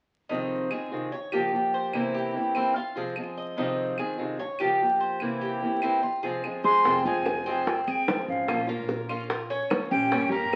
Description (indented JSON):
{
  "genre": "latin, Cuban son and guajira",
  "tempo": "147 BPM",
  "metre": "4/4",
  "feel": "straight",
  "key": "F minor",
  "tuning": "A4 = 441 Hz",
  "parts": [
    { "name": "fingerpicked steel-string acoustic guitar", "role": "accompaniment", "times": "0.3-10.6 s", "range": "F2 to G4", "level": "-32 LUFS", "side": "equal", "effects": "none" },
    { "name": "Cuban tres", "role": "arpeggios", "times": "0.3-10.6 s", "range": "C4 to Eb5", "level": "-32 LUFS", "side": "equal", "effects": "none" },
    { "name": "claves", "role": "percussion", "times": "0.7-10.6 s", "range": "none", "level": "-41 LUFS", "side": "equal", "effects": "none" },
    { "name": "concert flute", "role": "melody", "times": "6.6-10.6 s", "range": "F5 to C6", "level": "-28 LUFS", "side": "equal", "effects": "none" },
    { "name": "nylon-string guitar", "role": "second line", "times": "6.6-10.6 s", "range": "C4 to Ab4", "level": "-33 LUFS", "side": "equal", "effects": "none" },
    { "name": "upright bass", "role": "bass", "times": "6.8-10.6 s", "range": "F1 to Bb1", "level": "-45 LUFS", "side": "equal", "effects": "none" },
    { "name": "bongos", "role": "percussion", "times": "6.9-10.6 s", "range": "none", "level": "-32 LUFS", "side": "equal", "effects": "none" }
  ],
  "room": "wet studio reverb, RT60 0.8 s",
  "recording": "very old 78 rpm record, vinyl crackle, nothing above 11.0 kHz",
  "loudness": "-27 LUFS",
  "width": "mono",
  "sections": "0.3-6.8 A section; 6.8-10.6 B section",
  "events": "none",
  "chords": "0.3 Fm7; 1.1 Gm7b5; 1.9 C7; 2.8 Fm; 3.6 Fm7; 4.4 Gm7b5; 5.2 C7; 6.0 Fm; 8.5 Bbm"
}